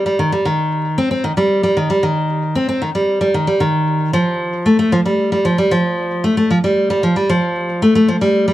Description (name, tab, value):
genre	folktronica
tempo	114 BPM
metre	4/4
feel	straight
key	F mixolydian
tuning	A4 = 440 Hz
part	picked steel-string acoustic guitar	solo	0.0-8.5 s	Eb3 to C4	-14 LUFS	equal	none
room	moderate small room reverb, RT60 0.5 s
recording	vinyl crackle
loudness	-14 LUFS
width	side -14 dB against mid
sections	0.0-4.1 A section; 4.1-8.5 B section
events	none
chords	none